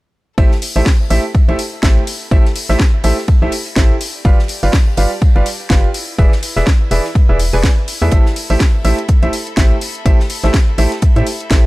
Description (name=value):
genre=piano house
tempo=124 BPM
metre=4/4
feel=swing 57% on 16ths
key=A minor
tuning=A4 = 441 Hz
part: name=bright upright piano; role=riff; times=0.4-11.7 s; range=E3 to G#5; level=-20 LUFS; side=right 1 dB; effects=sidechain pumping, analog delay
part: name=organ-like FM bass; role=bass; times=0.4-11.7 s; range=E1 to A2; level=-15 LUFS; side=equal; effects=sidechain pumping
part: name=electronic kick drum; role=drums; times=0.4-11.6 s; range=none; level=-11 LUFS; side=equal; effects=overdrive
part: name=unplugged drum kit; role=drums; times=0.4-11.6 s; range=hi-hat, ride cymbal, snare drum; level=-32 LUFS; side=right 1 dB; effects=high-pass filter on cymbals, high-pass filter on hats, high-pass filter on snare, high-pass filter on room
part: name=rich chamber string section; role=texture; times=0.4-11.7 s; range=E4 to B5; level=-34 LUFS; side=left 2 dB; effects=sidechain pumping
part: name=house drum kit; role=drums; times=0.6-11.6 s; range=hi-hat, snare drum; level=-21 LUFS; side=equal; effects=overdrive
room=studio ambience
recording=dry, gritty hardware recording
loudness=-11 LUFS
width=side -20 dB against mid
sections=0.4-11.7 A section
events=fade-in on string section 0.4-11.7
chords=0.4 Am7; 4.0 G7; 5.9 E7; 8.1 Am7